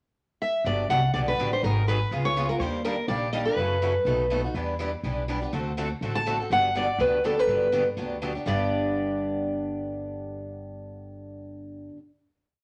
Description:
acoustic string swing (jazz manouche); 246 BPM; 4/4; swing 54% on 8ths; G major; A4 = 440 Hz
picked steel-string acoustic guitar; melody; 0.4-11.9 s; A4 to A5; -27 LUFS; equal
upright bass; bass; 0.6-11.9 s; G1 to F#2; -33 LUFS; equal
picked steel-string acoustic guitar; accompaniment; 0.7-12.0 s; G2 to A4; -35 LUFS; equal
picked steel-string acoustic guitar; accompaniment; 0.7-12.0 s; G2 to B4; -36 LUFS; equal
moderate studio reverb, RT60 0.7 s; -26 LUFS; mono
0.0-0.7 pickup bar; 0.7-8.5 A section; 8.5-10.4 final chord
0.0 N.C.; 0.7 Gmaj7; 1.6 Abm7; 2.1 C#7; 2.6 Ebmaj7; 3.6 F#m7; 4.1 B7; 4.5 Em7; 5.5 D7; 6.5 Gmaj7; 8.5 G

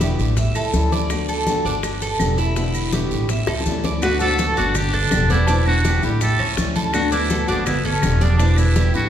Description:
latin, Cuban son and guajira; 165 BPM; 4/4; straight; D major; A4 = 440 Hz
nylon-string guitar; accompaniment; 0.0-9.1 s; B2 to G4; -26 LUFS; left 3 dB
Cuban tres; arpeggios; 0.0-9.1 s; C#4 to E5; -25 LUFS; right 2 dB
upright bass; bass; 0.0-9.1 s; E1 to D2; -21 LUFS; equal
bongos; percussion; 0.0-9.1 s; -30 LUFS; left 3 dB
congas; percussion; 0.0-9.1 s; -26 LUFS; left 2 dB
guiro; percussion; 0.0-9.1 s; -33 LUFS; right 5 dB
maracas; percussion; 0.0-9.1 s; -35 LUFS; left 5 dB
claves; percussion; 0.6-8.8 s; -36 LUFS; right 6 dB
trumpet with metal mute; melody; 4.0-9.1 s; C#4 to B4; -23 LUFS; right 1 dB
nylon-string guitar; second line; 4.0-9.1 s; A3 to F#4; -27 LUFS; equal
wet recital hall reverb, RT60 1.5 s; recorded in a church or concert hall; -17 LUFS; side -10 dB against mid
0.0-4.0 A section; 4.0-9.1 B section
drum fill 3.5-4.0
0.4 A7; 1.1 D6; 1.8 Em7; 3.3 A7; 4.0 D6; 4.8 Em7; 6.2 A7; 6.9 D6; 7.7 Em7

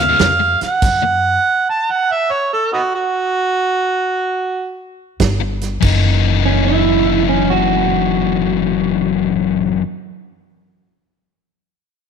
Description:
electric blues shuffle; 96 BPM; 4/4; swing 66% on 8ths; F# mixolydian; A4 = 441 Hz
mellow harmonica; melody; 0.0-4.8 s; B3 to A5; -15 LUFS; right 3 dB; overdrive, slapback echo
upright bass; bass; 0.0-1.3, 5.2-9.8 s; F#1 to F#2; -20 LUFS; equal
overdriven electric guitar; riff; 0.1-1.1, 5.4-9.8 s; F#2 to E#4; -17 LUFS; left 11 dB
natural country drum kit; drums; 0.2-1.0, 5.2-6.0 s; crash cymbal, hi-hat, kick drum, snare drum; -19 LUFS; right 3 dB
electric guitar through a small old amp; second line; 6.5-9.8 s; C#4 to F#4; -18 LUFS; right 11 dB
moderate echo chamber reverb, RT60 1.8 s; 1960s-style stereo with parts hard left and right; -14 LUFS; side -6 dB against mid
0.0-5.8 A section; 5.8-8.3 B section
stop 0.8-5.2
0.0 C#7; 0.8 N.C.; 5.8 F#6

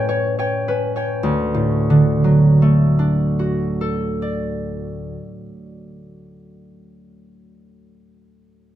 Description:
classical, solo harp piece; 58 BPM; 4/4; rubato; D major; A4 = 443 Hz
concert harp; solo; 0.0-6.8 s; D2 to B5; -16 LUFS; equal
moderate stone room reverb, RT60 1.0 s; minimal, uncompressed stereo recording; -16 LUFS; side -12 dB against mid
0.0-1.2 A section; 1.2-5.4 B section
slowing down 0.0-1.2
0.0 A9; 1.2 D

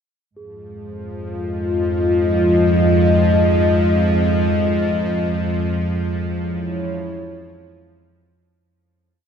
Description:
dark ambient drone; free time; F minor; A4 = 441 Hz
dark analog pad; sustained chords; 0.3-8.6 s; Ab3 to Eb5; -19 LUFS; left 1 dB; chorus
bowed-like drone; drone; 1.1-8.7 s; F2 to F3; -19 LUFS; right 1 dB; built-in reverb
bronze singing bowl; texture; 0.4-8.6 s; Ab4; -40 LUFS; left 1 dB
wet cathedral reverb, RT60 7.0 s; dark, warm production; -16 LUFS; side -7 dB against mid
0.3-8.6 A section
fade-out 4.5-8.6
0.3 Fm7; 4.5 Dbm

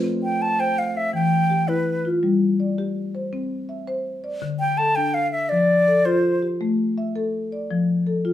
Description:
southern african traditional, mbira-style interlocking cycle; 110 BPM (dotted quarters); 12/8; straight; C major; A4 = 441 Hz
marimba with soft mallets; arpeggios; 0.0-8.3 s; D3 to G5; -22 LUFS; left 2 dB
wooden flute; melody; 0.2-6.5 s; B4 to A5; -20 LUFS; equal
wet studio reverb, RT60 0.7 s; heard from further back in the room; -19 LUFS; side -12 dB against mid
0.0-8.3 A section
0.0 C5; 1.1 Em; 2.2 G5; 3.3 C; 4.4 D5; 5.5 F; 6.6 A5; 7.7 F

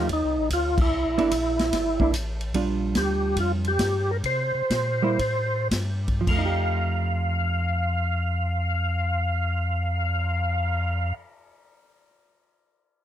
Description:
soul jazz organ trio; 103-148 BPM; 4/4; swing 67% on 8ths; F mixolydian; A4 = 440 Hz
percussive tonewheel organ; melody; 0.0-11.1 s; Eb4 to F5; -26 LUFS; equal; slow rotary speaker, overdrive, chorus vibrato
hollow-body jazz guitar; accompaniment; 0.0-11.4 s; F3 to G4; -28 LUFS; right 5 dB
tonewheel organ; bass; 0.0-11.1 s; G1 to C3; -26 LUFS; left 1 dB; chorus vibrato, slow rotary speaker
vintage drum kit; drums; 0.1-10.8 s; crash cymbal, cymbal swell, hi-hat, kick drum, ride cymbal, snare drum; -29 LUFS; left 1 dB
little or no reverb; close, detailed microphones; -22 LUFS; side -11 dB against mid
0.0-2.5 A section; 2.5-6.3 B section; 6.3-10.9 C section
band accent 0.7; slowing down 2.5-6.3
0.0 F7; 0.9 C9; 2.5 Bb6; 4.2 C7(no3); 6.3 F9

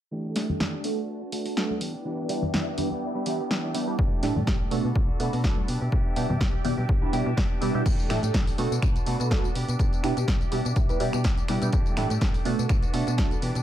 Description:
filtered disco house; 124 BPM; 4/4; swing 54% on 16ths; E minor; A4 = 436 Hz
phased string machine; sustained chords; 0.1-13.6 s; B3 to D6; -37 LUFS; equal; ensemble chorus, phaser, sidechain pumping, low-pass filter
clean electric guitar; riff; 0.1-13.6 s; E3 to G4; -34 LUFS; right 1 dB; vintage 12-bit sampler grit, sidechain pumping, low-pass filter
tambourine and congas; percussion; 0.1-7.8 s; -32 LUFS; left 1 dB; sidechain pumping on perc, low-pass filter on perc
funky polysynth comp; accompaniment; 0.4-13.3 s; G3 to B4; -30 LUFS; right 3 dB; chorus, phaser, sidechain pumping, low-pass filter
punchy analog drum machine; drums; 0.4-13.6 s; crash cymbal, finger snaps, hi-hat, snare drum, tambourine; -32 LUFS; equal; sidechain pumping on hats, sidechain pumping on cymbals, sidechain pumping on perc
slap-like FM bass; bass; 4.0-13.6 s; A1 to B2; -29 LUFS; equal; sidechain pumping, low-pass filter
electronic kick drum; drums; 4.0-13.3 s; -25 LUFS; equal
little or no reverb; -23 LUFS; side -12 dB against mid
0.1-7.9 A section; 7.9-13.6 B section
filter sweep 0.1-7.9
0.1 A7sus4; 0.8 Bm7; 1.8 Em7; 4.0 A7sus4; 4.7 Bm7; 5.7 Em7/B; 7.9 A7sus4; 8.6 Bm7; 9.6 Em7/B; 11.7 A7sus4; 12.5 Bm7

